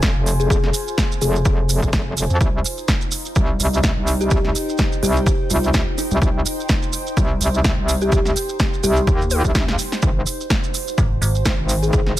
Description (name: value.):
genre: bass house.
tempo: 126 BPM.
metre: 4/4.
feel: swing 56% on 16ths.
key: unclear.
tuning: A4 = 440 Hz.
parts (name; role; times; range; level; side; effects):
metallic wobble bass; bass; 0.0-12.2 s; F1 to F2; -20 LUFS; equal; chorus, tube saturation, sidechain pumping.
big-room dance drum kit; drums; 0.0-12.2 s; hi-hat, snare drum, toms; -24 LUFS; equal; overdrive.
electronic kick drum; drums; 0.0-12.0 s; none; -20 LUFS; equal; overdrive.
maracas; percussion; 0.0-12.2 s; none; -28 LUFS; right 5 dB; none.
warbly tape-like pad; texture; 0.0-12.2 s; Eb4 to Ab5; -30 LUFS; equal; chorus, built-in reverb, phaser, sidechain pumping.
kalimba; melody; 0.4-12.0 s; Eb4 to Ab4; -26 LUFS; left 1 dB; none.
metallic FM bass; bass; 11.0-11.4 s; Ab1; -19 LUFS; equal; overdrive, sidechain pumping.
room: digital ambience.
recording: none.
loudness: -16 LUFS.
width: side -14 dB against mid.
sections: 0.0-12.2 A section.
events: drum fill 9.3-10.0.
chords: 0.0 Fm; 2.4 Cm; 10.0 Ab7.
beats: 0.03 | 0.50 0.98 1.46 1.93 | 2.41 2.88 3.36 3.84 | 4.31 4.79 5.26 5.74 | 6.22 6.69 7.17 7.65 | 8.12 8.60 9.07 9.55 | 10.03 10.50 10.98 11.46 | 11.93.